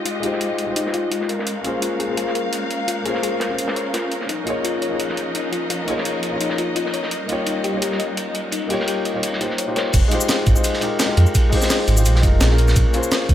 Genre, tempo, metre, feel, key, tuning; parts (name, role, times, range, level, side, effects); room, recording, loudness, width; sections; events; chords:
liquid drum and bass; 170 BPM; 4/4; swing 53% on 16ths; F minor; A4 = 440 Hz
dark concert grand piano; accompaniment; 0.0-13.3 s; Ab3 to Db5; -24 LUFS; left 2 dB; dub echo
dark studio string section; sustained chords; 0.0-9.9 s; F3 to F5; -27 LUFS; equal; sidechain pumping, low-pass filter
thumb-piano-like synth pluck; arpeggios; 0.0-9.9 s; Eb4 to Eb5; -27 LUFS; left 5 dB; chorus, digital delay
breakbeat sampler-style drum kit; drums; 0.1-13.3 s; crash cymbal, hi-hat, shaker, snare drum; -24 LUFS; equal; small room ambience
crunchy breakbeat drum kit; drums; 0.1-13.3 s; hi-hat, ride cymbal, snare drum; -28 LUFS; equal; high-pass filter on cymbals, low-pass filter on cymbals, small room ambience, high-pass filter on hats, low-pass filter on hats, high-pass filter on snare, low-pass filter on snare, high-pass filter on room, low-pass filter on room
sub bass with octave; bass; 9.9-13.3 s; F1 to F2; -15 LUFS; right 1 dB
electronic kick drum; drums; 9.9-13.3 s; -17 LUFS; right 1 dB; small room ambience
light reverb, studio reverb; -18 LUFS; side -11 dB against mid
0.0-9.9 A section; 9.9-13.3 B section
drop 9.9-13.3
0.0 Fm9; 1.3 Bbm7; 4.3 Db69; 7.1 Eb7; 9.9 Fm9; 12.6 Bbm7